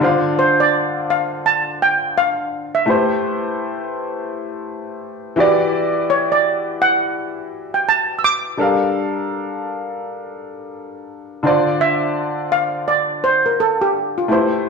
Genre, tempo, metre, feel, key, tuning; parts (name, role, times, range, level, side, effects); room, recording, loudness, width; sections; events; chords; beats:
R&B; 84 BPM; 4/4; swing 60% on 16ths; D minor; A4 = 442 Hz
warm upright piano; accompaniment; 0.0-14.7 s; D3 to F5; -20 LUFS; left 1 dB
steel pan; melody; 0.4-14.7 s; E4 to E6; -16 LUFS; right 2 dB
wet large studio reverb, RT60 1.3 s; band playing live in one room; -16 LUFS; side -4 dB against mid
0.0-11.4 A section; 11.4-14.7 B section
steel pan solo 11.4-14.7
0.0 Dm7; 2.9 Am9; 5.4 Em9; 8.6 Gm9; 11.4 Dm9
| 0.01 0.72 1.44 2.15 | 2.87 3.58 4.30 5.01 | 5.72 6.44 7.15 7.87 | 8.58 9.30 10.01 10.72 | 11.44 12.15 12.87 13.58 | 14.30